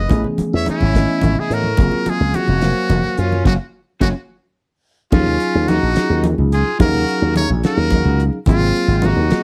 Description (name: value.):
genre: electric jazz fusion.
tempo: 72 BPM (dotted quarters).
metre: 6/8.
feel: straight.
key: unclear.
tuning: A4 = 441 Hz.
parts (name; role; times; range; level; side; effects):
trumpet with metal mute; melody; 0.0-9.4 s; E4 to E5; -23 LUFS; equal; none.
crunchy overdriven guitar; second line; 0.0-9.4 s; C4 to C#5; -31 LUFS; equal; none.
slap bass with an envelope filter; bass; 0.0-9.3 s; F1 to A2; -20 LUFS; equal; none.
bell-like tine electric piano; accompaniment; 0.1-9.4 s; E3 to F5; -24 LUFS; equal; none.
damped 70s drum kit; drums; 0.1-9.4 s; crash cymbal, hi-hat, kick drum, snare drum; -20 LUFS; equal; none.
congas; percussion; 0.1-9.3 s; none; -25 LUFS; equal; none.
room: little or no reverb.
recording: dry, close 1970s-style studio recording.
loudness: -17 LUFS.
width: mono.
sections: 0.0-5.1 A section; 5.1-9.4 B section.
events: band accent 3.5-5.1; drum fill 4.3-5.1.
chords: 0.1 Amaj9; 1.8 Gbmaj9#11; 3.5 Gb; 5.1 Ebm11; 8.5 Ab13.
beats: | 0.11 0.95 | 1.78 2.62 | 3.46 4.29 | 5.13 5.97 | 6.80 7.64 | 8.47 9.31.